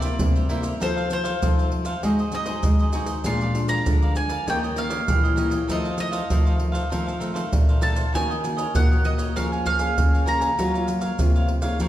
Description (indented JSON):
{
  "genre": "samba and choro",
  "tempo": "98 BPM",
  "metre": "4/4",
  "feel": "straight",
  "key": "Bb minor",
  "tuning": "A4 = 442 Hz",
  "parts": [
    { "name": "bowl-back mandolin", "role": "melody", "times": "0.0-10.9 s", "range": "C5 to C6", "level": "-27 LUFS", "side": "right 1 dB", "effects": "none" },
    { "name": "cavaquinho", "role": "accompaniment", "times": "0.0-11.9 s", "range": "Eb4 to Ab5", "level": "-32 LUFS", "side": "right 2 dB", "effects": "none" },
    { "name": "nylon-string guitar", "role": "accompaniment", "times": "0.0-11.9 s", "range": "F2 to A4", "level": "-30 LUFS", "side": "left 2 dB", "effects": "none" },
    { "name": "nylon-string guitar", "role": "bass", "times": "0.0-11.9 s", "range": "Bb2 to Ab3", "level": "-28 LUFS", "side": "left 1 dB", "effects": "none" },
    { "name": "maracas, pandeiro and surdo", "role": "percussion", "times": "0.0-11.9 s", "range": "none", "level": "-22 LUFS", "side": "equal", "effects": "none" }
  ],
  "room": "wet recital hall reverb, RT60 1.5 s",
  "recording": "recorded in a church or concert hall",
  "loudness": "-20 LUFS",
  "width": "side -13 dB against mid",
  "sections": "0.0-11.9 A section",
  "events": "none",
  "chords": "0.0 C7; 0.8 F7; 2.0 Ab7; 3.3 Bb7; 4.5 Eb7; 5.7 F7; 8.1 Ebm7; 9.4 Bbm7/F; 10.6 Gbmaj7",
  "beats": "0.20 | 0.81 1.42 2.04 2.65 | 3.26 3.87 4.48 5.09 | 5.70 6.31 6.92 7.54 | 8.15 8.76 9.37 9.98 | 10.59 11.20 11.81"
}